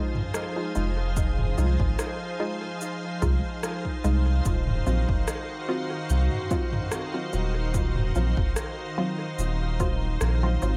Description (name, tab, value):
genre	ambient dub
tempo	73 BPM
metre	4/4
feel	swing 53% on 16ths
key	Eb dorian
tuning	A4 = 440 Hz
part	soft additive organ-like pad	sustained chords	0.0-10.8 s	Eb3 to F5	-34 LUFS	equal	ensemble chorus, built-in reverb
part	filtered dub chord stab	stabs	0.0-10.8 s	Gb3 to F4	-35 LUFS	equal	chorus, dub echo
part	organic electronic drum kit	drums	0.1-10.8 s	cabasa, rim click, toms	-35 LUFS	equal	overdrive, dub echo
part	soft dub sub bass	bass	0.8-10.8 s	Eb1 to C2	-27 LUFS	equal	none
part	electronic kick drum	drums	1.2-10.0 s	none	-32 LUFS	equal	overdrive
room	little or no reverb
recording	echo-heavy mix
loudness	-27 LUFS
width	mono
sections	0.0-10.8 A section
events	none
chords	0.0 Fm7; 4.5 Ebm69